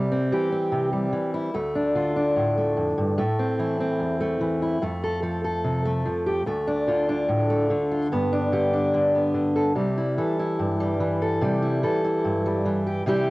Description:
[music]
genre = folk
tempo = 73 BPM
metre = 4/4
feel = straight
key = unclear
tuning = A4 = 440 Hz
[part]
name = fingerpicked steel-string acoustic guitar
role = solo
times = 0.0-13.3 s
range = D2 to A4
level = -22 LUFS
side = equal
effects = none
[sound]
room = light reverb, small room reverb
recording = home recording on cassette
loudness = -22 LUFS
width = side -21 dB against mid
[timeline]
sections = 0.0-13.1 A section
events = none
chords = 0.0 C; 1.5 Dm; 3.2 Am; 4.8 F; 6.5 Dm; 8.1 G; 9.8 C

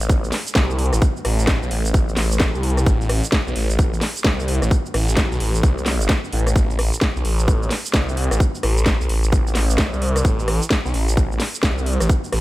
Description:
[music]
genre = bass house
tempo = 130 BPM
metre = 4/4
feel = swing 61% on 16ths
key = A minor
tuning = A4 = 440 Hz
[part]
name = phased detuned saw bass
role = bass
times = 0.0-12.4 s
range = A1 to C2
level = -20 LUFS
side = equal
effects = phaser, overdrive, sidechain pumping
[part]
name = garage drum kit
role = drums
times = 0.0-12.4 s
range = hi-hat, rim click, shaker, snare drum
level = -23 LUFS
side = equal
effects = studio reverb
[part]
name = electronic kick drum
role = drums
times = 0.1-12.2 s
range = none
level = -20 LUFS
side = equal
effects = studio reverb
[sound]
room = little or no reverb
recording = none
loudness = -17 LUFS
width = side -17 dB against mid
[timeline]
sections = 0.0-12.4 A section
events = none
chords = none

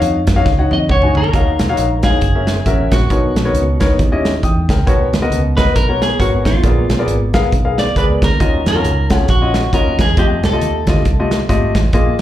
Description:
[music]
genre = uptempo gospel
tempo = 136 BPM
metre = 4/4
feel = swing 59% on 8ths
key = Eb minor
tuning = A4 = 440 Hz
[part]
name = warm concert grand piano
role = accompaniment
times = 0.0-12.2 s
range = Bb2 to Eb6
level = -18 LUFS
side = left 2 dB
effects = slapback echo
[part]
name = fingered electric bass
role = bass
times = 0.0-12.2 s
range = Gb1 to Gb2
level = -17 LUFS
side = equal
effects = none
[part]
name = natural country drum kit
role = drums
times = 0.0-12.2 s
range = hi-hat, kick drum, snare drum, toms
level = -17 LUFS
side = right 1 dB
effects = none
[part]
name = clean electric guitar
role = melody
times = 0.7-11.3 s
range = F4 to Eb5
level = -20 LUFS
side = right 1 dB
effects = spring reverb, slapback echo
[sound]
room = light reverb, small room ambience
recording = live gig heard through the venue's PA, club reverb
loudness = -12 LUFS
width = side -12 dB against mid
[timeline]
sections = 0.0-1.3 A section; 1.3-12.2 B section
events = drum fill 0.5-1.3; grand piano fill 0.5-1.3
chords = 0.0 Ebm9; 2.2 Gb7; 3.1 Bmaj9; 4.0 Eb7b9; 4.9 Abm11/Cb; 6.6 Bb7b9; 8.4 Ebm9; 10.2 F9

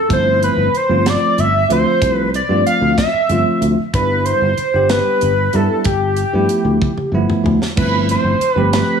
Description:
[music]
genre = electric jazz fusion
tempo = 63 BPM (dotted quarters)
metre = 6/8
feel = straight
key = G mixolydian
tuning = A4 = 440 Hz
[part]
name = pulse-width lead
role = melody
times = 0.0-9.0 s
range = G4 to F5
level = -17 LUFS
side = right 1 dB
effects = chorus, slapback echo
[part]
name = breathy bright concert flute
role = second line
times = 0.0-7.1 s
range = G4 to F5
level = -22 LUFS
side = left 4 dB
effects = none
[part]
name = bell-like tine electric piano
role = accompaniment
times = 0.1-9.0 s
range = F3 to G4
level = -20 LUFS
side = right 3 dB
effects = fast stereo tremolo
[part]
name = sustaining fretless electric bass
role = bass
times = 0.1-8.8 s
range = G1 to G2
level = -18 LUFS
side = left 1 dB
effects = none
[part]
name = tight funk drum kit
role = drums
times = 0.1-8.9 s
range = crash cymbal, hi-hat, kick drum, snare drum, toms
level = -21 LUFS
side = equal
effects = none
[sound]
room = light reverb, studio reverb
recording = studio ambience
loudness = -13 LUFS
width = side -6 dB against mid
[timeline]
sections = 0.0-7.8 A section; 7.8-9.0 A section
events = drum fill 6.8-7.8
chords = 0.1 G13sus4; 3.9 Cmaj7/G; 5.9 G13; 7.8 G13sus4

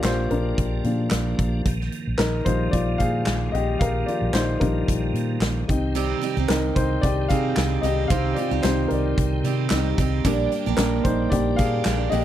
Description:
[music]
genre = piano-driven pop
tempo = 112 BPM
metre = 4/4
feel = swing 56% on 16ths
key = unclear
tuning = A4 = 440 Hz
[part]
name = dark upright piano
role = accompaniment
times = 0.0-12.2 s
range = F3 to F5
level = -25 LUFS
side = left 3 dB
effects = none
[part]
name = tonewheel organ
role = sustained chords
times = 0.0-12.2 s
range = C3 to G5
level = -32 LUFS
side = right 5 dB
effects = overdrive, chorus vibrato, slow rotary speaker
[part]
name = vintage muted fingered electric bass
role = bass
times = 0.0-12.2 s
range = Bb1 to C3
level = -25 LUFS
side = equal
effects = none
[part]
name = huge arena drum kit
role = drums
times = 0.0-12.2 s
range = handclaps, hi-hat, kick drum, snare drum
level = -26 LUFS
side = equal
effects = none
[part]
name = picked steel-string acoustic guitar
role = riff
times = 6.0-12.2 s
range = Bb2 to G4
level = -27 LUFS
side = right 13 dB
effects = none
[sound]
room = little or no reverb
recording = dry, close 1970s-style studio recording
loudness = -20 LUFS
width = side -11 dB against mid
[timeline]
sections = 0.0-12.2 A section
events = upright piano solo 0.0-12.2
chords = 0.0 Ebadd9/Bb; 5.7 Cm; 10.2 Gm/Bb

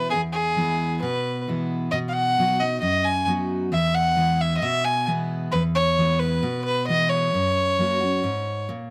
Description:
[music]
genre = country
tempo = 133 BPM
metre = 4/4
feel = straight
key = unclear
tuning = A4 = 442 Hz
[part]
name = warm fiddle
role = melody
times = 0.0-8.7 s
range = G#4 to G#5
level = -25 LUFS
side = equal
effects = none
[part]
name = picked steel-string acoustic guitar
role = accompaniment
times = 0.0-8.9 s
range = E2 to F#4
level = -27 LUFS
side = equal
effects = none
[sound]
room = light reverb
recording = close, detailed microphones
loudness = -23 LUFS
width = mono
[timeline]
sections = 0.0-8.9 A section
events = none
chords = 0.0 E; 1.9 B; 3.7 E; 7.3 F#

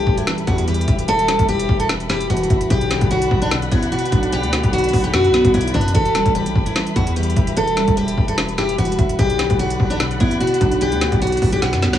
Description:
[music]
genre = hip hop, trap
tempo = 148 BPM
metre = 4/4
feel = half-time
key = E minor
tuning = A4 = 445 Hz
[part]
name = picked steel-string acoustic guitar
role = melody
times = 0.0-12.0 s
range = D4 to A4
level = -19 LUFS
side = left 1 dB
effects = low-pass filter, digital delay
[part]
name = warbly lo-fi synth keys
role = accompaniment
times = 0.0-12.0 s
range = B2 to E5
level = -24 LUFS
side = right 1 dB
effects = chorus, low-pass filter
[part]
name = muted studio string section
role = sustained chords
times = 0.0-12.0 s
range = G3 to B5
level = -29 LUFS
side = left 2 dB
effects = none
[part]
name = distorted 808-style bass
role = bass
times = 0.0-12.0 s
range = E1 to F#2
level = -22 LUFS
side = equal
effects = distortion
[part]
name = impact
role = sound effects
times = 0.2-1.1 s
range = none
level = barely audible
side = none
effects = none
[part]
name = trap drum kit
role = drums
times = 0.1-12.0 s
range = hi-hat, kick drum, snare drum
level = -20 LUFS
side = equal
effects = none
[sound]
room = light reverb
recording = small room ambience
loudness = -15 LUFS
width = side -11 dB against mid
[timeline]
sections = 0.0-12.0 A section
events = impact 0.0-1.1; drum fill 11.6-12.0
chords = 0.0 Em; 2.7 Bm; 5.9 Em; 9.2 Bm

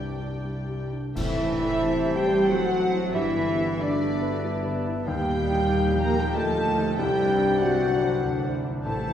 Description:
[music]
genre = cinematic, emotional film score for orchestra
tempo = 84-97 BPM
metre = 3/4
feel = rubato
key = unclear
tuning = A4 = 440 Hz
[part]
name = clear French horn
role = melody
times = 0.0-0.5 s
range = D4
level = -48 LUFS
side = right 2 dB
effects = none
[part]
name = warm symphonic violin section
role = melody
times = 0.0-9.1 s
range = D5 to Bb5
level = -38 LUFS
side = left 2 dB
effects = none
[part]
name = warm studio violin section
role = second line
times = 0.0-9.1 s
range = D5 to Bb5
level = -36 LUFS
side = equal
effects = none
[part]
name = dark baby grand piano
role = accompaniment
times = 0.0-9.1 s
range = C2 to C5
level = -31 LUFS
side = left 1 dB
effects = none
[part]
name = dark symphonic viola section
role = accompaniment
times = 0.0-9.1 s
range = E3 to A4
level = -35 LUFS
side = right 1 dB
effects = none
[part]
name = concert harp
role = arpeggios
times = 0.0-9.1 s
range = G2 to E5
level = -35 LUFS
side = left 3 dB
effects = none
[part]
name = dark symphonic double bass section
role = bass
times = 0.0-9.1 s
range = G1 to Eb2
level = -34 LUFS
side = right 2 dB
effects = none
[part]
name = warm symphonic cello section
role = bass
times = 0.0-9.1 s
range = C2 to Bb3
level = -31 LUFS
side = right 2 dB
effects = none
[part]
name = mellow hollow flute section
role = second line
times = 1.2-9.1 s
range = D5 to Bb5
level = -33 LUFS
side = right 1 dB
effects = none
[part]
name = warm clarinet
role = second line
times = 1.2-9.1 s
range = C5 to F5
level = -35 LUFS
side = left 3 dB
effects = none
[part]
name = warm oboe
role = second line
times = 1.2-9.1 s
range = G5 to B5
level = -36 LUFS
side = right 2 dB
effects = none
[part]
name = mellow French horn section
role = sustained chords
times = 1.2-9.1 s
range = D4 to Bb4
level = -26 LUFS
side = left 1 dB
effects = none
[part]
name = clash cymbals and concert bass drum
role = percussion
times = 1.2-2.4 s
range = none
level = -36 LUFS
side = equal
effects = none
[sound]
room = wet scoring stage reverb, RT60 1.7 s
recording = heard from further back in the room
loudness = -22 LUFS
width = side -9 dB against mid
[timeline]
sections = 0.0-1.2 A section; 1.2-9.1 B section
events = band accent 1.2-1.8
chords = 0.0 Csus2; 1.2 Am7; 3.1 G6; 5.1 Ebadd9; 7.0 Csus2

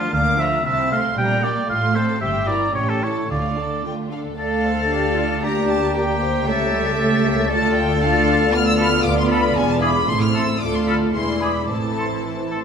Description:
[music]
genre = quick classical-period movement for symphony orchestra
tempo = 114 BPM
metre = 2/4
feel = straight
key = D minor, A minor from 8.5 s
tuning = A4 = 440 Hz
[part]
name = rich studio violin section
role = melody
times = 0.0-12.5 s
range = E5 to F6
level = -27 LUFS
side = left 2 dB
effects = none
[part]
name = clear oboe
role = second line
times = 0.0-12.6 s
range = F4 to G5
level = -24 LUFS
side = right 1 dB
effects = none
[part]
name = dark studio violin section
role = second line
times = 0.0-12.6 s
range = A3 to E5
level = -28 LUFS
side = left 2 dB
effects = none
[part]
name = warm studio viola section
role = accompaniment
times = 0.0-12.6 s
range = E3 to A4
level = -23 LUFS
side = right 1 dB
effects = none
[part]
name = warm studio cello section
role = bass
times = 0.0-12.6 s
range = C#2 to D3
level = -26 LUFS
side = right 3 dB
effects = none
[part]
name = dark studio double bass section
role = bass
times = 0.1-12.6 s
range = E1 to D2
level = -27 LUFS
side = right 2 dB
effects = none
[part]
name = mellow small flute group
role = second line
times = 4.4-12.6 s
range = Bb5 to A6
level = -25 LUFS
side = left 1 dB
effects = none
[part]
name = mellow French horn section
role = sustained chords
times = 4.4-12.5 s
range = G#3 to A4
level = -26 LUFS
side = left 5 dB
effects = none
[sound]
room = wet scoring stage reverb, RT60 1.7 s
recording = minimal, uncompressed stereo recording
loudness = -17 LUFS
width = side -7 dB against mid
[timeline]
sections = 0.0-4.4 A section; 4.4-12.6 A section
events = none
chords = 0.1 Bb/D; 0.7 Am/C; 1.2 Gm/Bb; 1.7 F/A; 2.2 Edim/G; 2.8 A7; 3.3 Dm; 5.4 Gm/D; 6.5 A7/C#; 7.5 Dm; 8.5 Bm7b5/D; 9.6 E7b9; 10.1 Am; 10.6 Dm; 11.1 E7; 11.7 Am

